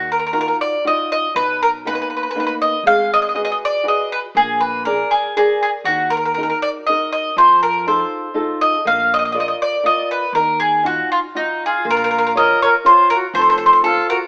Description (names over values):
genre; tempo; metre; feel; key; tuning
italian folk, Italian serenade; 120 BPM; 3/4; rubato; Eb harmonic minor; A4 = 440 Hz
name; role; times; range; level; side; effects
mandolin; melody; 0.0-14.2 s; Eb4 to F5; -18 LUFS; equal; none
flamenco guitar; accompaniment; 0.0-14.2 s; B2 to D5; -26 LUFS; equal; none
upright bass; bass; 0.0-14.0 s; F1 to F2; -39 LUFS; equal; none
accordion; second line; 11.7-14.2 s; F4 to Bb4; -21 LUFS; equal; none
room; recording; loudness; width
moderate stone room reverb, RT60 1.1 s; band playing live in one room, AM radio sound; -17 LUFS; mono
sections
0.0-11.8 A section; 11.8-14.3 B section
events
none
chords
0.0 Ebmadd9; 1.4 Bmaj7; 2.9 Abm7; 4.3 Bb7; 5.9 Ebm; 7.4 F7; 8.9 Bb; 10.3 Ebmadd9; 11.8 Bbm; 13.3 F